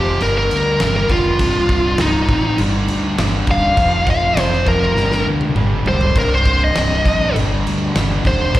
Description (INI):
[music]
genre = hard rock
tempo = 101 BPM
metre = 4/4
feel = straight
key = unclear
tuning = A4 = 440 Hz
[part]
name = bluesy overdriven lead guitar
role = melody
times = 0.0-8.6 s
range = Eb4 to F5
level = -18 LUFS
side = equal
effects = distortion, plate reverb, digital delay
[part]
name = cranked stack guitar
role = riff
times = 0.0-8.6 s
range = C2 to G3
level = -22 LUFS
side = equal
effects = overdrive, slapback echo
[part]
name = fuzz fingered electric bass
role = bass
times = 0.0-8.6 s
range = C1 to D2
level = -20 LUFS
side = equal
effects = overdrive
[part]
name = huge arena drum kit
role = drums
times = 0.2-8.6 s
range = crash cymbal, kick drum, snare drum, toms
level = -20 LUFS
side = equal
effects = none
[sound]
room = light reverb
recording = live gig heard through the venue's PA, recital hall reverb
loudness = -14 LUFS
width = side -15 dB against mid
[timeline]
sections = 0.0-8.6 A section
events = lead electric guitar solo 0.0-8.6; drum fill 5.0-6.2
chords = 0.2 Gm; 1.4 Cm; 2.6 G5; 3.8 F5; 5.0 G5; 6.2 Cm; 7.3 G5